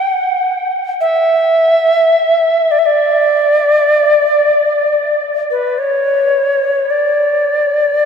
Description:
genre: world meditative, free-time meditation music.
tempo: free time.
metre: none.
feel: none.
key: unclear.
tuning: A4 = 440 Hz.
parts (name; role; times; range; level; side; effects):
Native American-style cedar flute; solo; 0.0-8.1 s; B4 to F#5; -11 LUFS; equal; ping-pong delay.
room: wet huge ambient reverb, RT60 8.2 s.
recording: dreamy mix soaked in reverb.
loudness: -11 LUFS.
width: side -6 dB against mid.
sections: 0.0-8.1 A section.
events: none.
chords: none.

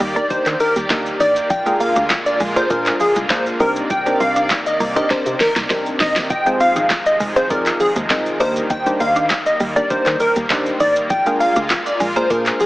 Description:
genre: dance-pop.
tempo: 100 BPM.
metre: 4/4.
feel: straight.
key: Eb major.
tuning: A4 = 438 Hz.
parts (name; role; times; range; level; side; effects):
supersaw pad; sustained chords; 0.0-12.7 s; C3 to D5; -25 LUFS; equal; sidechain pumping.
mallet-like synth pluck; arpeggios; 0.0-12.7 s; Eb3 to F4; -28 LUFS; right 1 dB; chorus, sidechain pumping, tape echo.
organ-like FM bass; bass; 0.0-12.5 s; Fb1 to Eb3; -28 LUFS; equal; sidechain pumping.
pop drum kit; drums; 0.0-12.7 s; handclaps, hi-hat, kick drum, shaker, snare drum; -22 LUFS; equal; none.
plucky unison lead; melody; 0.2-12.7 s; Ab4 to G5; -18 LUFS; equal; sidechain pumping, tape echo.
wavetable chord stab; accompaniment; 0.2-12.7 s; Bb3 to D5; -22 LUFS; equal; sidechain pumping.
group handclap; percussion; 0.9-11.8 s; none; barely audible; none; none.
room: moderate lush hall reverb, RT60 1.7 s, digital ambience.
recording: heavily compressed radio sound, multiband compression, AM radio sound.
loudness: -15 LUFS.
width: side -18 dB against mid.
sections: 0.0-12.7 A section.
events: drum fill 5.1-6.3.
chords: 0.0 Ebmaj7; 1.5 Bb7; 3.6 Cm9; 6.3 Fm7; 8.4 Ebmaj7; 11.1 Bb7.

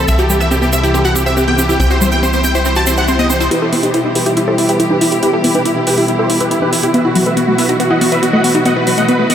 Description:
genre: uplifting trance.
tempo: 140 BPM.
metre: 4/4.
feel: straight.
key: E harmonic minor.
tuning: A4 = 442 Hz.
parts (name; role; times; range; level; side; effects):
supersaw chords; melody; 0.0-9.3 s; E4 to A5; -16 LUFS; right 1 dB; low-pass filter, tape echo.
analog pluck; second line; 0.0-3.5 s; G4 to A5; -25 LUFS; equal; none.
muted studio string section; sustained chords; 0.0-9.3 s; B2 to G4; -18 LUFS; equal; none.
wide unison pluck; arpeggios; 0.0-9.3 s; F#3 to E5; -16 LUFS; left 1 dB; tape echo.
tight sequencer bass; bass; 0.0-3.5 s; C2; -17 LUFS; equal; none.
tube shaker; percussion; 0.1-3.5 s; none; -24 LUFS; right 2 dB; none.
swell; sound effects; 2.8-3.5 s; none; -29 LUFS; left 1 dB; none.
electronic hi-hat; drums; 3.5-9.3 s; none; -20 LUFS; right 2 dB; high-pass filter on hats, high-pass filter on room.
room: wet huge ambient reverb, RT60 9.1 s.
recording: dreamy mix soaked in reverb, high-pass filter.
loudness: -11 LUFS.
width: side -9 dB against mid.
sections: 0.0-3.5 A section; 3.5-9.3 B section.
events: swell 2.8-3.5; build-up 3.5-9.3; filter sweep on supersaw synth 3.5-9.3.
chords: 0.1 C; 3.5 Em; 6.9 Bsus4.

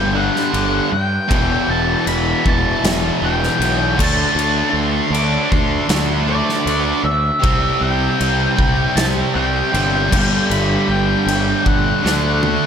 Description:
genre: quiet-loud alternative rock.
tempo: 78 BPM.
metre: 4/4.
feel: straight.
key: unclear.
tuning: A4 = 439 Hz.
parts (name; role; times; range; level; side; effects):
octave-fuzz lead guitar; melody; 0.0-12.7 s; D5 to D6; -20 LUFS; left 1 dB; distortion.
distorted electric guitar; riff; 0.0-12.7 s; E2 to D4; -24 LUFS; equal; overdrive, slapback echo.
high-gain distorted guitar; riff; 0.0-12.7 s; E2 to D4; -22 LUFS; right 9 dB; distortion.
tight distorted guitar; riff; 0.0-12.7 s; E2 to D4; -23 LUFS; left 10 dB; distortion.
fuzz fingered electric bass; bass; 0.0-12.6 s; E1 to G2; -21 LUFS; equal; overdrive.
big rock drum kit; drums; 0.4-12.6 s; crash cymbal, kick drum, snare drum, toms; -22 LUFS; equal; none.
room: moderate lush hall reverb, RT60 2.9 s.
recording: big arena sound.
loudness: -14 LUFS.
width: side -7 dB against mid.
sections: 0.0-12.7 A section.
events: drum fill 12.0-12.7.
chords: 0.0 G5; 1.3 Em; 4.0 D5; 7.4 C5; 10.1 G5; 12.0 D.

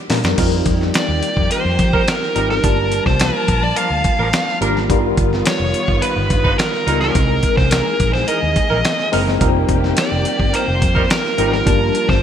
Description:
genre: polished 1980s jazz-funk pop.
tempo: 106 BPM.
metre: 4/4.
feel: straight.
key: unclear.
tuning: A4 = 440 Hz.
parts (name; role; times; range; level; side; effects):
tine electric piano; accompaniment; 0.0-12.2 s; G3 to A5; -21 LUFS; left 3 dB; overdrive, fast stereo tremolo, wide subtle chorus.
vintage muted fingered electric bass; bass; 0.1-12.2 s; F1 to F3; -20 LUFS; equal; none.
dusty soul sampler-style drum kit; drums; 0.1-12.2 s; crash cymbal, hi-hat, kick drum, snare drum; -19 LUFS; equal; none.
dark symphonic string section; sustained chords; 0.4-12.2 s; Eb3 to A5; -27 LUFS; left 1 dB; none.
nasal lead guitar with a parked wah; melody; 1.0-12.2 s; Bb4 to F5; -20 LUFS; right 1 dB; overdrive.
mellow horn section; second line; 1.5-11.6 s; E3 to B4; -24 LUFS; right 4 dB; none.
room: light reverb, digital ambience.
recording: bright 1980s-style digital production.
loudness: -14 LUFS.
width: side -9 dB against mid.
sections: 0.4-12.2 A section.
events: drum fill 0.0-0.4.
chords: 0.4 F9sus4; 2.6 Gm9; 4.9 G7alt; 7.2 C7alt; 9.4 F9sus4; 11.7 Gm9.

